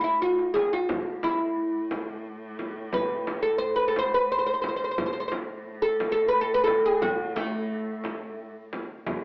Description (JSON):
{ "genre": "Persian modal ensemble", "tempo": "59 BPM (dotted quarters)", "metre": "6/8", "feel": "straight", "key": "A avaz esfahan", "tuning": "A4 = 440 Hz", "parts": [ { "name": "oud", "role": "melody", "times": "0.0-8.6 s", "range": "A3 to C5", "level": "-24 LUFS", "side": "equal", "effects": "cassette tape, plate reverb" }, { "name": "rich cello", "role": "drone", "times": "0.0-9.1 s", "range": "A2", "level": "-39 LUFS", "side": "equal", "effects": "cassette tape, plate reverb" }, { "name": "tombak", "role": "percussion", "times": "0.2-9.2 s", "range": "none", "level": "-40 LUFS", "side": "equal", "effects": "none" }, { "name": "frame drum", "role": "percussion", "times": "0.6-9.2 s", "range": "none", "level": "-34 LUFS", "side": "equal", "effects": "none" } ], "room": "wet booth ambience, RT60 0.2 s", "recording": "home recording on cassette, AM radio sound", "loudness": "-24 LUFS", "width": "side -36 dB against mid", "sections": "0.0-9.1 A section", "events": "drum fill 0.2-0.9", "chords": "none", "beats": "| 0.90 1.92 | 2.94 3.96 | 4.99 6.01 | 7.03 8.05 | 9.07" }